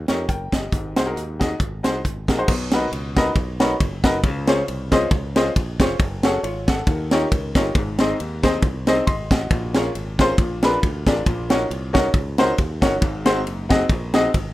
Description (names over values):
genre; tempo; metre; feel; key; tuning
uptempo gospel; 137 BPM; 4/4; swing 56% on 8ths; unclear; A4 = 440 Hz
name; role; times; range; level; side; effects
modern bright fingered electric bass; bass; 0.0-14.5 s; F1 to F2; -29 LUFS; equal; none
clear upright piano; accompaniment; 0.1-14.3 s; Ab2 to C6; -22 LUFS; left 1 dB; none
tight funk drum kit; drums; 0.1-14.5 s; crash cymbal, hi-hat, kick drum, ride cymbal, snare drum; -20 LUFS; equal; none
room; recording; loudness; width
studio ambience; rough home demo mix; -18 LUFS; side -16 dB against mid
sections
0.0-2.5 A section; 2.5-14.5 B section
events
none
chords
0.0 Eb7; 0.7 Ab7; 2.5 Cbmaj7; 4.2 Dbmaj7; 6.0 Gbmadd9; 6.9 Eb9; 7.8 Ab; 9.5 Bbm7; 10.4 Bb7b9; 11.3 Ebm7/Bb; 13.0 Ab7